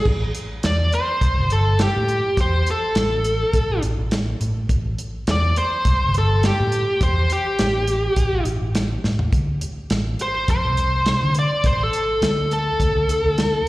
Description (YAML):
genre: straight-eighth soul blues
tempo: 104 BPM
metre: 4/4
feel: swing 55% on 16ths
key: A minor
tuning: A4 = 439 Hz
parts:
  - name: smooth overdriven lead guitar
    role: melody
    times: 0.0-13.7 s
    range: G4 to D5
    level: -21 LUFS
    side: equal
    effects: slapback echo, tape echo
  - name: vintage muted fingered electric bass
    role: bass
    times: 0.1-13.6 s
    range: G1 to D3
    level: -21 LUFS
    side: equal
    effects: none
  - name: warm soul drum kit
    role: drums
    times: 0.1-13.5 s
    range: crash cymbal, hi-hat, kick drum, snare drum, toms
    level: -23 LUFS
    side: equal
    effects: slapback echo
room: light reverb, small room ambience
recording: live gig heard through the venue's PA, recital hall reverb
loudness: -18 LUFS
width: side -18 dB against mid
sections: 0.1-13.7 A section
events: lead electric guitar solo 0.1-13.7; drum fill 9.0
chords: 0.1 A7(no3); 9.3 D7(no3)